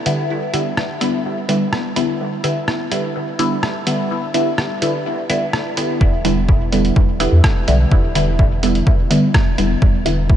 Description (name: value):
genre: dub techno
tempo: 126 BPM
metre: 4/4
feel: straight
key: E minor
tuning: A4 = 444 Hz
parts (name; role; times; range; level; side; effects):
- filtered dub chord stab; stabs; 0.1-10.2 s; D3 to E4; -18 LUFS; equal; phaser, sidechain pumping, dub echo
- lo-fi sampler-style drum kit; drums; 0.1-10.2 s; hi-hat, rim click; -24 LUFS; right 1 dB; none
- warm sub bass; bass; 6.0-10.4 s; E1 to E2; -18 LUFS; equal; sidechain pumping
- electronic kick drum; drums; 6.0-10.4 s; none; -14 LUFS; equal; none
room: moderate huge ambient reverb, RT60 8.3 s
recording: dreamy mix soaked in reverb, nothing above 10.4 kHz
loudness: -15 LUFS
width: side -10 dB against mid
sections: 0.0-6.0 A section; 6.0-10.4 B section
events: none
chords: 0.0 Em7